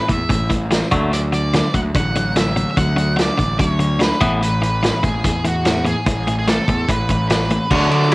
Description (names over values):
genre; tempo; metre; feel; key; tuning
indie rock; 146 BPM; 4/4; straight; unclear; A4 = 441 Hz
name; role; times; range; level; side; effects
octave-fuzz lead guitar; melody; 0.0-8.1 s; F#4 to F#5; -23 LUFS; right 1 dB; distortion, analog delay
twangy electric guitar; riff; 0.0-8.1 s; A2 to B3; -20 LUFS; left 1 dB; spring reverb, cassette tape
fuzz fingered electric bass; bass; 0.1-8.1 s; A1 to D3; -21 LUFS; equal; overdrive
vintage drum kit; drums; 0.1-8.1 s; crash cymbal, hi-hat, kick drum, ride cymbal, snare drum; -20 LUFS; equal; none
overdriven semi-hollow guitar; riff; 7.7-8.1 s; F#3 to F#4; -20 LUFS; right 5 dB; wide subtle chorus, cassette tape
room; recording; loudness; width
light reverb; home recording on cassette; -15 LUFS; side -22 dB against mid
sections
0.0-7.7 A section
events
none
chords
0.0 A5; 0.9 D; 4.2 Asus2